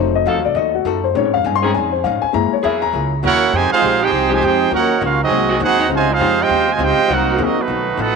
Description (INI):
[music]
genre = jazz, big band swing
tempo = 202 BPM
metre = 4/4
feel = swing 62% on 8ths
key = F minor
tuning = A4 = 443 Hz
[part]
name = archtop guitar, miked and amplified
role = accompaniment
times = 0.0-8.2 s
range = Ab2 to Ab4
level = -26 LUFS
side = left 10 dB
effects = none
[part]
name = warm grand piano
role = accompaniment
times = 0.0-7.6 s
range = F3 to C6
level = -19 LUFS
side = left 10 dB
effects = none
[part]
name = upright bass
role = bass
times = 0.0-8.1 s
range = F1 to Bb2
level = -24 LUFS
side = right 2 dB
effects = none
[part]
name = clear saxophone section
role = sustained chords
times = 0.3-7.5 s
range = Eb3 to A4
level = -27 LUFS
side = right 1 dB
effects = none
[part]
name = clear trombone section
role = second line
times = 3.2-8.2 s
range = C3 to G4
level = -21 LUFS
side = right 13 dB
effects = none
[part]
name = warm trumpet section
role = melody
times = 3.3-8.2 s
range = A3 to Ab5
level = -15 LUFS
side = right 4 dB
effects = none
[sound]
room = moderate plate reverb, RT60 2.9 s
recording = 1960s-style stereo with parts hard left and right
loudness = -14 LUFS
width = side -4 dB against mid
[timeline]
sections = 0.0-3.5 A section; 3.5-8.2 B section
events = grand piano solo 0.0-3.5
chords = 0.0 F7b9; 1.2 Bbm11; 2.3 Gb9; 3.5 Fm9; 4.7 Ebm7; 5.3 Ab7; 5.9 Dbmaj9; 7.1 Cm7b5